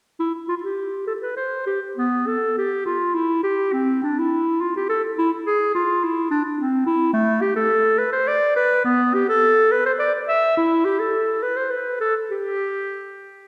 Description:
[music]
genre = classical, baroque-style fantasia for unaccompanied clarinet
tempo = 104 BPM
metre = 3/4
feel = rubato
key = G major from 7.1 s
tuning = A4 = 440 Hz
[part]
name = clear clarinet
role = solo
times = 0.2-13.5 s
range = A3 to E5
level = -21 LUFS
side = equal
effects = none
[sound]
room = wet concert hall reverb, RT60 2.0 s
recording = heard from further back in the room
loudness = -21 LUFS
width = mono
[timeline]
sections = 0.2-13.5 A section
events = none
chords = none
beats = | 0.19 0.78 1.37 | 1.97 2.56 3.14 | 3.72 4.30 4.88 | 5.45 6.02 6.58 | 7.14 7.71 8.27 | 8.85 9.43 10.00 | 10.56 11.13 11.71 | 12.31 12.92

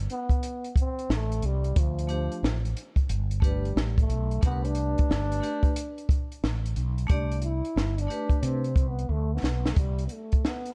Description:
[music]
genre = hip hop, jazz-hop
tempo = 90 BPM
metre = 4/4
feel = swing 65% on 16ths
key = C major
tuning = A4 = 440 Hz
[part]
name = mellow fretless electric bass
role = bass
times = 0.0-10.1 s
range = G1 to C3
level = -30 LUFS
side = equal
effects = none
[part]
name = breathy trombone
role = melody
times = 0.1-10.7 s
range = F3 to E4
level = -36 LUFS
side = equal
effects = none
[part]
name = compact cocktail drum kit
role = drums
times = 0.1-10.7 s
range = hi-hat, kick drum, snare drum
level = -28 LUFS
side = equal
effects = vintage 12-bit sampler grit
[part]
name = vibraphone with medium hard mallets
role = accompaniment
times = 2.1-8.6 s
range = A3 to D5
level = -38 LUFS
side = equal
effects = none
[sound]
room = small room ambience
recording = dark, warm production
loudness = -27 LUFS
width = mono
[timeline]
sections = 0.0-9.8 A section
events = trombone solo 0.0-9.8; drum fill 9.1-9.8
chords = 0.0 N.C.; 1.8 Dm7; 3.1 Gadd9; 4.4 Csus2; 9.8 C5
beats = 0.43 1.10 | 1.76 2.43 3.10 3.76 | 4.43 5.10 5.76 6.43 | 7.10 7.76 8.43 9.10 | 9.76 10.43

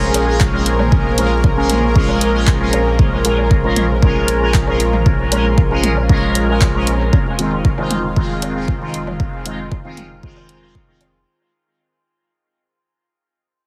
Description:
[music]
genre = dub techno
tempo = 116 BPM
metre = 4/4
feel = straight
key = F minor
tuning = A4 = 439 Hz
[part]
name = granular cloud pad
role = sustained chords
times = 0.0-7.1 s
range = Bb3 to Bb4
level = -26 LUFS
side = equal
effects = built-in reverb, sidechain pumping
[part]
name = resonant sweep polysynth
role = stabs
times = 0.0-11.0 s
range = Eb3 to Bb4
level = -21 LUFS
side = equal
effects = chorus, phaser, sidechain pumping, dub echo
[part]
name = soft dub sub bass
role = bass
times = 0.0-11.2 s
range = F1 to Bb1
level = -23 LUFS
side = equal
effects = sidechain pumping
[part]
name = bubbling stepped-filter texture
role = texture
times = 0.0-11.3 s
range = C4 to F5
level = -33 LUFS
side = equal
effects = none
[part]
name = punchy analog drum machine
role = drums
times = 0.1-11.1 s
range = handclaps, hi-hat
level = -24 LUFS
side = equal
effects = overdrive, small room reverb
[part]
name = electronic woodblock and toms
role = percussion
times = 0.1-11.1 s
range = none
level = -28 LUFS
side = equal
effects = overdrive, sidechain pumping on perc, small room reverb, sidechain pumping on toms, dub echo
[part]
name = electronic kick drum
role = drums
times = 0.4-10.9 s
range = none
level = -18 LUFS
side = equal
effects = overdrive, small room reverb
[sound]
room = light reverb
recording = heavily compressed radio sound, multiband compression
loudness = -16 LUFS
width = mono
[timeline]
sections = 0.0-7.1 A section; 7.1-11.3 B section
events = fade-out 7.1-11.3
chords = 0.0 Bbm7; 7.1 Fm7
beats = 0.40 | 0.92 1.44 1.96 2.47 | 2.99 3.51 4.03 4.54 | 5.06 5.58 6.09 6.61 | 7.13 7.65 8.16 8.68 | 9.20 9.71 10.23 10.75

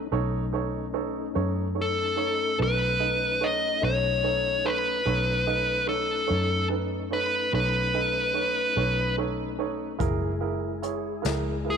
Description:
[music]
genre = slow blues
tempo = 48 BPM (dotted quarters)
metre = 12/8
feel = straight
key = B mixolydian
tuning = A4 = 440 Hz
[part]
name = mellow tonewheel organ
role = sustained chords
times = 0.0-11.8 s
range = G#3 to G#4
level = -35 LUFS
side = left 13 dB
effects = chorus vibrato, slow rotary speaker
[part]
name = vintage muted fingered electric bass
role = bass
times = 0.0-11.8 s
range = F#1 to F#2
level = -30 LUFS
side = equal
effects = none
[part]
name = warm upright piano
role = accompaniment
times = 0.1-11.8 s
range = D#4 to D#5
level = -32 LUFS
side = right 12 dB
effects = none
[part]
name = dark smooth lead guitar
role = melody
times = 1.8-11.8 s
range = G#4 to D#5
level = -25 LUFS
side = left 1 dB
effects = overdrive
[part]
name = jazz brush drum kit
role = drums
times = 10.0-11.4 s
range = hi-hat, kick drum, snare drum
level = -31 LUFS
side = left 4 dB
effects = none
[sound]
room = light reverb, small room ambience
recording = 1960s-style stereo with parts hard left and right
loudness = -24 LUFS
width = side -7 dB against mid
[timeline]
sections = 0.0-11.8 A section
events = none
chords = 0.0 B9; 10.0 F#9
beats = | 0.12 1.36 2.59 3.83 | 5.06 6.30 7.54 8.77 | 10.01 11.24

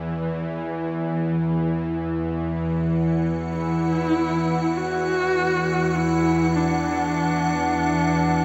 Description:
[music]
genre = dark ambient drone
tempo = free time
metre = none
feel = none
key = unclear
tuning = A4 = 440 Hz
[part]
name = bowed-like drone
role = drone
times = 0.0-8.4 s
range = E2 to E3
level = -25 LUFS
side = equal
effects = built-in reverb
[part]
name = icy glass pad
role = texture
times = 3.0-8.4 s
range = F#5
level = -31 LUFS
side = equal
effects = chorus, built-in reverb, shimmer reverb
[part]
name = warm horsehead fiddle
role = melody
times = 3.5-8.4 s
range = D4 to F#4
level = -25 LUFS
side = equal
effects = shimmer reverb, delay
[sound]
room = wet plate reverb, RT60 2.6 s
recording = dreamy mix soaked in reverb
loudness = -23 LUFS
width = mono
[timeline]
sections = 0.0-8.4 A section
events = none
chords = 0.0 N.C.; 2.3 Dadd9/E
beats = free time

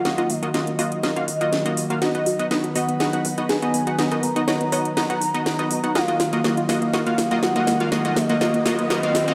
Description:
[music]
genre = progressive house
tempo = 122 BPM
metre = 4/4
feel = straight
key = Eb minor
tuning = A4 = 439 Hz
[part]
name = warm velvety synth lead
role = melody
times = 0.0-9.3 s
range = Eb5 to Bb5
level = -29 LUFS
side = equal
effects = chorus, delay
[part]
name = airy breathy pad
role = sustained chords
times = 0.0-9.3 s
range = Eb3 to B4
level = -31 LUFS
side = equal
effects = chorus
[part]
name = soft round pluck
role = arpeggios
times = 0.0-9.3 s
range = Bb3 to Db5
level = -28 LUFS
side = equal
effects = chorus, digital delay
[part]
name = supersaw stab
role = stabs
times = 0.0-9.3 s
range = Bb3 to F#5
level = -27 LUFS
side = equal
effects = cassette tape, low-pass filter, digital delay
[part]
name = tight sequencer bass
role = bass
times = 0.1-9.2 s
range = none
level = barely audible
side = none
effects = none
[part]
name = house drum kit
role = drums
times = 0.1-9.3 s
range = hi-hat, snare drum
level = -28 LUFS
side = equal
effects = overdrive
[part]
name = riser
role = sound effects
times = 7.6-9.3 s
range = none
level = -34 LUFS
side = equal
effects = none
[sound]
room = moderate lush hall reverb, RT60 2.0 s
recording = none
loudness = -22 LUFS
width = mono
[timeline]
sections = 0.0-9.3 A section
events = build-up 0.0-9.3; drum fill 0.0-9.3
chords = 0.0 Ebmadd9; 2.0 B/D#; 6.0 Ebmadd9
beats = | 0.05 0.54 1.03 1.53 | 2.02 2.51 3.00 3.49 | 3.99 4.48 4.97 5.46 | 5.95 6.45 6.94 7.43 | 7.92 8.41 8.90

